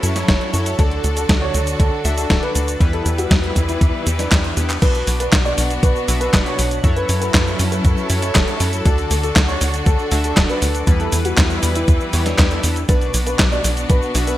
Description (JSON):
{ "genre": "italo disco", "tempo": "119 BPM", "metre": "4/4", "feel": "straight", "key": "B minor", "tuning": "A4 = 440 Hz", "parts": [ { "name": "clear studio string section", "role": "sustained chords", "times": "0.0-14.4 s", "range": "D3 to B4", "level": "-25 LUFS", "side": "equal", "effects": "none" }, { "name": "chorused polysynth", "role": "stabs", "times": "0.0-14.4 s", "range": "B2 to F#5", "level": "-26 LUFS", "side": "left 2 dB", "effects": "vintage 12-bit sampler grit" }, { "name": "tight sequencer bass", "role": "bass", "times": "0.0-14.4 s", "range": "D1 to F#2", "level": "-20 LUFS", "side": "equal", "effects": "none" }, { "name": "clean 12-bit digital drum machine", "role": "drums", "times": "0.0-14.4 s", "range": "cabasa, crash cymbal, handclaps, hi-hat, snare drum", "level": "-20 LUFS", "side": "equal", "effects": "gated reverb" }, { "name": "dark grand piano", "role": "melody", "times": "0.2-14.4 s", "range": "D4 to D5", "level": "-25 LUFS", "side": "equal", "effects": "analog chorus, digital delay" }, { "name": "electronic kick drum", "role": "drums", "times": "0.3-14.0 s", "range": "none", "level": "-16 LUFS", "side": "equal", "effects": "none" } ], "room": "light reverb, digital ambience", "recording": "bright 1980s-style digital production", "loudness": "-15 LUFS", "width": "side -14 dB against mid", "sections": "0.0-4.8 A section; 4.8-14.4 B section", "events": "drum fill 4.3-4.8; band accent 4.7", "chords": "0.0 F#m7; 0.8 D; 2.8 Em; 4.8 Bm; 6.8 F#m7; 8.9 D; 10.9 Em; 12.9 Bm" }